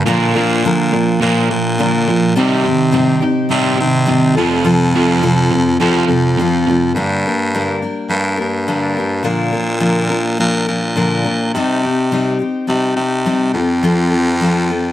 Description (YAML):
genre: folk rock and heartland rock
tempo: 105 BPM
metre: 4/4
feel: straight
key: C dorian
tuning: A4 = 436 Hz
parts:
  - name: picked steel-string acoustic guitar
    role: accompaniment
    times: 0.0-14.9 s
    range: G2 to Bb4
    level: -16 LUFS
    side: left 2 dB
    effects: none
  - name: overdriven electric guitar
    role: riff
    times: 0.0-6.9 s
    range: F2 to Bb3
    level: -17 LUFS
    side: right 4 dB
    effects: none
  - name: raspy baritone saxophone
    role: bass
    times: 0.0-14.9 s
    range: F2 to C3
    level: -17 LUFS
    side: right 1 dB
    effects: none
room: light reverb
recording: dark, warm production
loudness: -13 LUFS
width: side -12 dB against mid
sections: 0.0-7.0 A section; 7.0-14.9 B section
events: none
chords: 0.1 Bb; 2.4 Cm; 4.4 F; 7.0 Gm; 9.3 Bb; 11.6 Cm; 13.6 F